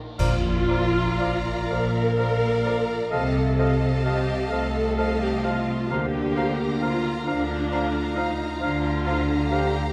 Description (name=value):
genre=classical, slow romantic movement for symphony orchestra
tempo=38-46 BPM (dotted quarters)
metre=12/8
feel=rubato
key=Bb major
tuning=A4 = 440 Hz
part: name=warm studio viola section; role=accompaniment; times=0.0-9.9 s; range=Eb3 to Bb4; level=-30 LUFS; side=equal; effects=none
part: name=concert harp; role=arpeggios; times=0.0-9.9 s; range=Bb2 to F6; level=-36 LUFS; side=equal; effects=none
part: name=mellow hollow silver concert flute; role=second line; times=0.2-9.6 s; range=A5 to Bb5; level=-40 LUFS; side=equal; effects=none
part: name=warm clarinet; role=second line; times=0.2-9.7 s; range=D5 to F5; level=-38 LUFS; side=equal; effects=none
part: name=warm oboe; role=second line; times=0.2-9.7 s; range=F5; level=-38 LUFS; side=equal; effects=none
part: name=mellow bassoon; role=accompaniment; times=0.2-9.7 s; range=F3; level=-39 LUFS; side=equal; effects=none
part: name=rich chamber double bass section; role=bass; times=0.2-9.8 s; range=Bb1 to D2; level=-31 LUFS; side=equal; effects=none
part: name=warm studio cello section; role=bass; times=0.2-9.8 s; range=Bb2 to D3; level=-32 LUFS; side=equal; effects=none
part: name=clash cymbals and concert bass drum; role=percussion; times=0.2-2.1 s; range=none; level=-33 LUFS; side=equal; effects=none
part: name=timpani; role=percussion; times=0.2-1.7 s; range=Bb2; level=-34 LUFS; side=equal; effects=none
part: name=warm studio violin section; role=melody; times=0.7-9.9 s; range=A5 to Bb5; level=-40 LUFS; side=equal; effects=none
part: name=warm studio violin section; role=second line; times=0.7-9.9 s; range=D5 to F5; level=-38 LUFS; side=equal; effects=none
part: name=dark French horn section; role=sustained chords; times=3.1-9.9 s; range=A3 to F4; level=-33 LUFS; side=equal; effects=none
room=moderate concert hall reverb, RT60 2.3 s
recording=none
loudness=-24 LUFS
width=mono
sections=0.2-9.9 A section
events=band accent 0.2-1.2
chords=0.2 Bb; 3.1 F7/C; 5.9 Bb/D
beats=| 0.19 1.70 3.12 4.51 | 5.91 7.26 8.61